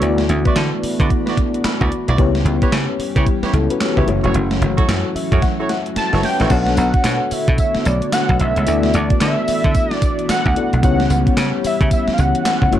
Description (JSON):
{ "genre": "R&B, new jack swing", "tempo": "111 BPM", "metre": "4/4", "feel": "swing 61% on 16ths", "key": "B minor", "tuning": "A4 = 438 Hz", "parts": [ { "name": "FM electric piano with tremolo", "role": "accompaniment", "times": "0.0-12.8 s", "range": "A3 to B5", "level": "-22 LUFS", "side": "left 7 dB", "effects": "none" }, { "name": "chorused pulse-width pad", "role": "sustained chords", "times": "0.0-12.8 s", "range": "D3 to C#5", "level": "-24 LUFS", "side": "right 1 dB", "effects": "none" }, { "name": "dry thumbed slap bass", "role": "bass", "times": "0.0-12.8 s", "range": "E1 to D3", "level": "-18 LUFS", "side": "right 1 dB", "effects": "none" }, { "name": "gated 80s digital drum machine", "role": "drums", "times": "0.0-12.8 s", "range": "crash cymbal, handclaps, hi-hat, kick drum, snare drum, tambourine", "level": "-19 LUFS", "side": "right 1 dB", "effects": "gated reverb, gated reverb snare, overdrive" }, { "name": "warm horn section", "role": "stabs", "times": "0.5-6.5 s", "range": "E4 to D5", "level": "-26 LUFS", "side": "right 4 dB", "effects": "ping-pong delay" }, { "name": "fat analog lead", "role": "melody", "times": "6.0-12.8 s", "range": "D5 to A5", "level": "-20 LUFS", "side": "right 1 dB", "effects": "chorus" } ], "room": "little or no reverb", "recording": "dark, warm production", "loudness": "-14 LUFS", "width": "side -11 dB against mid", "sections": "0.0-6.5 A section; 6.5-12.8 B section", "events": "FM electric piano fill 1.4-2.2, 4.9-6.5; drum fill 5.4-6.5", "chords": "0.0 D69; 2.2 C#m7b5; 4.1 F#m7; 6.5 Bm9; 8.7 D69; 10.8 C#m7b5" }